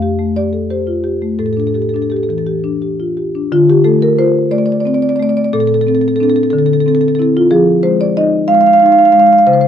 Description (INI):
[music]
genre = classical, contemporary piece for solo marimba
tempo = 56-62 BPM (dotted quarters)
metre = 6/8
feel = rubato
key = D minor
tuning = A4 = 438 Hz
[part]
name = marimba with soft mallets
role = solo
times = 0.0-9.7 s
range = F2 to F5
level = -10 LUFS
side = equal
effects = none
[sound]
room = light reverb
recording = dark, warm production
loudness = -10 LUFS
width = side -9 dB against mid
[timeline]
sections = 0.0-3.5 A section; 3.5-9.7 B section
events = none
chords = 0.0 Fadd9; 1.4 A7sus4; 3.5 Dm7; 5.5 Bbmaj9; 6.5 Dsus2; 7.5 Fm7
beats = 0.35 | 1.39 2.46 | 3.51 4.52 | 5.52 6.52 | 7.51 8.48 | 9.46